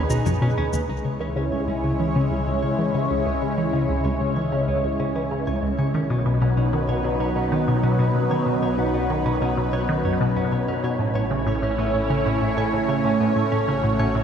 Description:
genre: ambient, sequencer-driven space music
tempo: 95 BPM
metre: 4/4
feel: straight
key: C# minor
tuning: A4 = 440 Hz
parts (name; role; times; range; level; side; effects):
- lush unison pad; sustained chords; 0.0-14.2 s; F#3 to C#5; -24 LUFS; equal; chorus, phaser, shimmer reverb
- resonant blip pluck; riff; 0.0-14.2 s; C#2 to E3; -23 LUFS; equal; phaser, tape echo
- fat analog bass; bass; 0.0-14.2 s; A1 to C#2; -33 LUFS; equal; none
- direct-recorded clean electric guitar; arpeggios; 0.1-14.2 s; C#3 to C#5; -36 LUFS; moving between left 3 dB and right 4 dB; auto-pan, tape echo, shimmer reverb
- electronic cabasa and toms; percussion; 0.1-0.9 s; none; -31 LUFS; left 5 dB; tape echo
- wind-like tuned noise texture; texture; 1.8-14.2 s; C#4 to C#5; -33 LUFS; right 2 dB; built-in reverb, shimmer reverb
room: moderate plate reverb, RT60 2.5 s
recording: dreamy mix soaked in reverb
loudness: -20 LUFS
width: side -8 dB against mid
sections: 0.9-14.2 A section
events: fade-in on clean electric guitar 0.9-14.2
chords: 0.0 B; 0.9 C#m; 5.9 B; 11.0 A

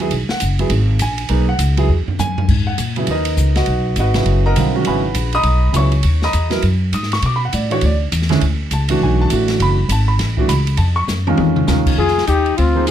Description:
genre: modal jazz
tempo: 202 BPM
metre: 4/4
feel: swing 62% on 8ths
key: G# phrygian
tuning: A4 = 440 Hz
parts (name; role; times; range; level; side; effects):
- warm concert grand piano; accompaniment; 0.0-12.9 s; C#3 to D#6; -19 LUFS; right 3 dB; none
- upright bass; bass; 0.0-12.9 s; Gb1 to B2; -16 LUFS; equal; none
- open jazz drum kit; drums; 0.0-12.9 s; crash cymbal, hi-hat, kick drum, ride cymbal, snare drum, toms; -22 LUFS; left 1 dB; none
- trumpet with bucket mute; melody; 12.0-12.9 s; F4 to Ab4; -17 LUFS; left 3 dB; none
- breathy alto saxophone; second line; 12.0-12.9 s; C4 to F4; -20 LUFS; left 9 dB; none
room: light reverb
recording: none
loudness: -14 LUFS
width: side -10 dB against mid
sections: 0.0-2.5 A section; 2.5-12.0 A section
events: drum fill 1.9-2.5, 11.1-11.7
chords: 0.0 Gb9sus4; 2.5 G#m9; 7.2 Bm9; 10.8 D#m11; 12.0 Bb9sus4 (rootless)

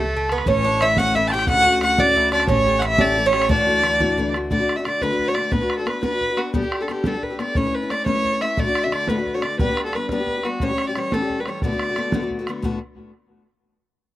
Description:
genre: celtic folk, Celtic jig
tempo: 118 BPM (dotted quarters)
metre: 6/8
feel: straight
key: D major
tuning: A4 = 435 Hz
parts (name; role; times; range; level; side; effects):
- dark fiddle; melody; 0.0-12.3 s; F#4 to A5; -20 LUFS; equal; slapback echo
- Irish bouzouki; second line; 0.0-4.3 s; A3 to G4; -25 LUFS; right 5 dB; none
- upright bass; bass; 0.0-4.5 s; A1 to D2; -28 LUFS; equal; none
- bodhran; percussion; 0.1-12.8 s; none; -26 LUFS; right 1 dB; none
- picked steel-string acoustic guitar; accompaniment; 0.5-12.8 s; D2 to B4; -24 LUFS; left 3 dB; slapback echo
room: little or no reverb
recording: recorded outdoors, with no room sound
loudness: -18 LUFS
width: side -14 dB against mid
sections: 0.0-4.5 A section; 4.5-12.6 B section; 12.6-13.6 C section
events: none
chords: 0.5 A; 1.5 Dmaj7; 2.5 A7; 3.5 Dadd9; 4.5 D; 5.5 Bm; 6.5 Gadd9; 7.6 Aadd9; 8.6 D; 9.6 G; 10.6 A7; 11.6 D6

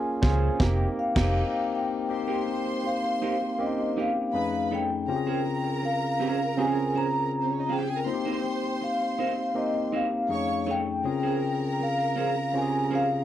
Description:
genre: lush 1970s-style soul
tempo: 80 BPM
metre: 4/4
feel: straight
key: Bb dorian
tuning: A4 = 440 Hz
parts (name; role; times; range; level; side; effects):
- vibraphone with soft mallets; melody; 0.0-13.2 s; Eb5 to Bb5; -29 LUFS; left 2 dB; none
- barky tine electric piano; accompaniment; 0.0-13.2 s; F2 to C5; -29 LUFS; moving between left 6 dB and right 3 dB; overdrive, auto-pan
- electric guitar through a small old amp; riff; 0.2-13.1 s; Db4 to C#5; -34 LUFS; right 8 dB; spring reverb
- vintage muted fingered electric bass; bass; 0.2-1.4 s; F1 to Db2; -24 LUFS; equal; none
- modern studio drum kit; drums; 0.2-1.4 s; crash cymbal, kick drum, snare drum; -27 LUFS; right 1 dB; none
- warm studio violin section; second line; 2.1-13.2 s; C4 to C#6; -35 LUFS; right 3 dB; none
room: little or no reverb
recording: dry, close 1970s-style studio recording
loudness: -24 LUFS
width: side -11 dB against mid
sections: 0.0-2.1 A section; 2.1-13.2 B section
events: band accent 0.0-2.1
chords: 0.0 Bbm9; 0.6 F9sus4; 2.1 Cm7; 4.3 F7alt; 5.1 Bbm9/Db; 8.1 Cm7; 10.3 F7alt; 11.1 Bbm9/Db

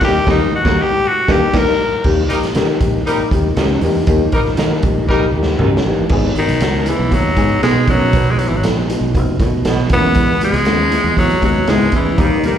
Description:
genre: uptempo 1960s-style soul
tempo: 118 BPM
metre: 4/4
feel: straight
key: unclear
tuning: A4 = 440 Hz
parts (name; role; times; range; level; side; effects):
- raspy tenor saxophone; melody; 0.0-2.1, 6.4-12.6 s; D#3 to A#4; -16 LUFS; left 1 dB; slapback echo
- dark upright piano; accompaniment; 0.0-12.6 s; D#3 to D#5; -19 LUFS; left 5 dB; slapback echo
- breathy baritone saxophone; riff; 0.0-12.4 s; D#2 to B2; -22 LUFS; right 4 dB; slapback echo
- electric guitar through a small old amp; stabs; 0.0-5.7 s; D#4 to D#5; -27 LUFS; right 8 dB; tremolo, slapback echo
- fingered electric bass; bass; 0.0-12.5 s; F#1 to D#3; -19 LUFS; right 1 dB; none
- raw garage drum kit; drums; 0.0-12.6 s; crash cymbal, hi-hat, kick drum, snare drum, toms; -18 LUFS; right 1 dB; none
- mellow horn section; second line; 2.3-5.3, 12.2-12.5 s; G3 to A#4; -24 LUFS; right 2 dB; slapback echo
room: light reverb, studio ambience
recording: live gig heard through the venue's PA, club reverb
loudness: -12 LUFS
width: side -9 dB against mid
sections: 0.0-2.0 A section; 2.0-6.1 B section; 6.1-12.6 C section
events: tenor saxophone solo 0.0-2.0; band accent 0.0-2.0, 12.2-12.6; drum fill 5.1-6.1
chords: 0.0 D#; 6.1 G#m; 7.9 B; 9.9 E

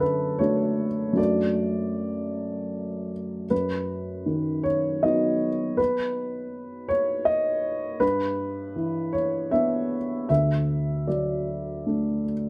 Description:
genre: neoclassical minimalist piano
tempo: 78 BPM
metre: 3/4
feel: rubato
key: D major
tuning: A4 = 440 Hz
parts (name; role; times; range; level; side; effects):
- dark upright piano; solo; 0.0-12.5 s; D2 to E5; -26 LUFS; equal; none
room: moderate studio reverb, RT60 0.6 s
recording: none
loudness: -26 LUFS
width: mono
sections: 0.0-12.5 A section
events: none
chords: 0.0 D/F#; 3.5 B/F#; 8.0 Em7/G; 10.3 D

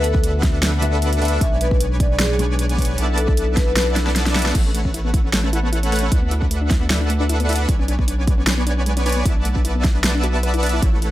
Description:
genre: future bass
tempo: 153 BPM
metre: 4/4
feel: swing 54% on 16ths, half-time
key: unclear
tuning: A4 = 439 Hz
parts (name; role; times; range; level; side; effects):
- vibraphone with medium mallets; melody; 0.0-3.7 s; G#4 to E5; -25 LUFS; left 1 dB; sidechain pumping, tape echo
- mellow electric guitar; accompaniment; 0.0-4.5 s; B2 to C#6; -26 LUFS; left 4 dB; vintage 12-bit sampler grit, sidechain pumping, digital delay
- supersaw chords; riff; 0.0-11.1 s; A3 to A5; -25 LUFS; equal; sidechain pumping, digital delay
- saturated sub bass; bass; 0.0-11.1 s; A1 to D2; -20 LUFS; equal; sidechain pumping
- big-room dance drum kit; drums; 0.0-11.1 s; crash cymbal, hi-hat, snare drum; -23 LUFS; equal; overdrive
- electronic kick drum; drums; 0.1-10.9 s; none; -19 LUFS; equal; none
- soft round pluck; arpeggios; 4.5-11.1 s; G#3 to B4; -28 LUFS; left 4 dB; chorus, sidechain pumping, digital delay
room: digital ambience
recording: none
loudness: -16 LUFS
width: side -14 dB against mid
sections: 0.0-4.5 A section; 4.5-11.1 A section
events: drop 0.0-4.5, 4.5-11.1; drum fill 4.0-4.5; band accent 4.5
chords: 0.0 D69; 1.4 Bm69; 3.0 E9sus4/B; 4.5 A69; 6.1 D69; 7.7 Bm69; 9.3 E9sus4/B

